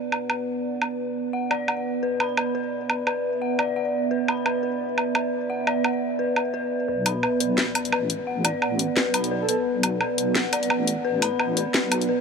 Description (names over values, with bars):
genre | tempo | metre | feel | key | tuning
half-time drum and bass | 173 BPM | 4/4 | swing 57% on 16ths, half-time | B minor | A4 = 440 Hz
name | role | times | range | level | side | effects
dark analog pad | sustained chords | 0.0-12.2 s | B3 to F#5 | -26 LUFS | right 2 dB | chorus, phaser
drum and bass drum kit | drums | 0.1-12.1 s | hi-hat, snare drum, woodblock | -25 LUFS | equal | none
dark detuned synth bell | arpeggios | 1.3-12.2 s | B4 to B5 | -28 LUFS | left 5 dB | chorus, low-pass filter, digital delay
deep soft wobble bass | bass | 6.9-12.2 s | A1 to B1 | -30 LUFS | left 1 dB | chorus, high-pass filter
breathy flute-like synth lead | melody | 9.4-9.5 s | A4 | -34 LUFS | right 3 dB | tremolo, analog chorus, ping-pong delay
room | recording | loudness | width
moderate huge ambient reverb, RT60 8.3 s | high-pass filter | -22 LUFS | side -5 dB against mid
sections
0.0-6.9 A section; 6.9-12.2 B section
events
build-up 6.9-12.2; filter sweep on synth bell 6.9-12.2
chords
0.0 Bm